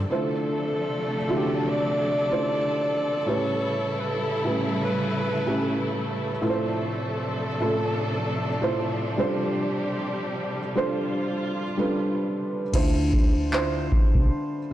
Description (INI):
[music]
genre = contemporary R&B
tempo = 76 BPM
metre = 4/4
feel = swing 58% on 16ths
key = D dorian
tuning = A4 = 439 Hz
[part]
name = felt-muted upright piano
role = accompaniment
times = 0.0-14.7 s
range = A2 to D5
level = -26 LUFS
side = right 1 dB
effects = none
[part]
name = warm studio string section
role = sustained chords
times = 0.0-12.7 s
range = C3 to A4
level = -29 LUFS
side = equal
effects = sidechain pumping
[part]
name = vintage muted fingered electric bass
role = bass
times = 0.0, 12.7-14.3 s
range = C2 to D2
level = -26 LUFS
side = equal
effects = none
[part]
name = breathy alto saxophone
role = melody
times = 0.1-6.0 s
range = A4 to D5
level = -29 LUFS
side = equal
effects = tape echo
[part]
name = booming analog drum machine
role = drums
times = 12.7-14.3 s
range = crash cymbal, handclaps, kick drum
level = -22 LUFS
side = equal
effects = none
[sound]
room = light reverb, studio ambience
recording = blown-out, overdriven recording, overdrive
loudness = -23 LUFS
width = side -13 dB against mid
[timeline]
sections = 0.1-12.7 A section; 12.7-14.7 B section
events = hi-hats muted 12.7-14.7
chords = 0.1 Dm7; 3.3 A7; 6.4 Dm7/A; 9.2 G7sus4; 12.7 Dm7